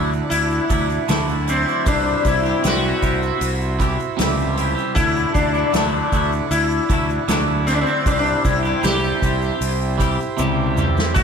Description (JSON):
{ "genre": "psychedelic rock", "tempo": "77 BPM", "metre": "4/4", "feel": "straight", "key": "unclear", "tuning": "A4 = 438 Hz", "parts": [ { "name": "hand-pumped harmonium", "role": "sustained chords", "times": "0.0-11.2 s", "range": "E4 to G5", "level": "-27 LUFS", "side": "right 5 dB", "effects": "none" }, { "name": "twangy electric guitar", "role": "riff", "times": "0.0-11.2 s", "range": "C3 to G4", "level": "-24 LUFS", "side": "equal", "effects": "phaser, double-tracked left and right" }, { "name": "fuzz fingered electric bass", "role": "bass", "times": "0.0-11.2 s", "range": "C2 to D2", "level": "-23 LUFS", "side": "right 1 dB", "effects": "overdrive" }, { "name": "tanpura", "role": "drone", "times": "0.0-5.2 s", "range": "none", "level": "barely audible", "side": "none", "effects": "none" }, { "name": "tube shaker", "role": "percussion", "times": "0.1-11.2 s", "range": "none", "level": "-37 LUFS", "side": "left 18 dB", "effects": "none" }, { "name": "sitar", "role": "melody", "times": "0.3-11.2 s", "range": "C4 to G4", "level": "-22 LUFS", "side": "left 3 dB", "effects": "ping-pong delay" }, { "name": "soft-mallet drum kit", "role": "drums", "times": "0.3-11.2 s", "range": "hi-hat, kick drum, snare drum, toms", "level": "-23 LUFS", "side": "equal", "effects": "none" } ], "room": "moderate church reverb, RT60 2.8 s", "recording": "dreamy mix soaked in reverb", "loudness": "-17 LUFS", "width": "side -6 dB against mid", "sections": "0.0-11.2 A section", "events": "drum fill 10.4-11.2", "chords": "0.0 Dadd9; 1.9 C; 5.0 Dadd9; 8.1 C" }